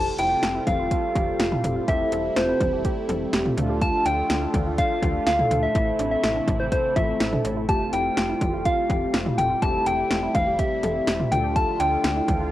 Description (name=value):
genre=synth-pop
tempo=124 BPM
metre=4/4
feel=straight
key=F major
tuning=A4 = 436 Hz
part: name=soft struck synth lead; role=melody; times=0.0-12.5 s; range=C5 to A5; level=-24 LUFS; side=left 1 dB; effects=chorus, cassette tape, tape echo
part: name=mellow synth brass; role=accompaniment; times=0.0-12.5 s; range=A3 to A4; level=-28 LUFS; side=equal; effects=chorus, cassette tape
part: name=phased analog pad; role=sustained chords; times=0.0-12.5 s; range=C3 to F4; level=-34 LUFS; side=right 2 dB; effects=phaser, chorus, cassette tape
part: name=soft round pluck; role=arpeggios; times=0.0-12.5 s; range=D4 to A4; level=-31 LUFS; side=right 1 dB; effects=chorus, cassette tape, tape echo
part: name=slap-like FM bass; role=bass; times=0.0-12.5 s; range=E1 to D2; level=-31 LUFS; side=equal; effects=none
part: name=deep house drum kit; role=drums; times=0.2-12.4 s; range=cowbell, hi-hat, kick drum, snare drum, toms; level=-26 LUFS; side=equal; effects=overdrive, cassette tape
room=moderate studio reverb, RT60 0.6 s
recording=home recording on cassette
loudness=-20 LUFS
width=side -14 dB against mid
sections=0.0-12.5 A section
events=none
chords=0.0 Fadd9; 1.9 C6/E; 3.6 Dm; 5.8 Am; 7.7 Fadd9; 9.6 C6/E; 11.3 Dm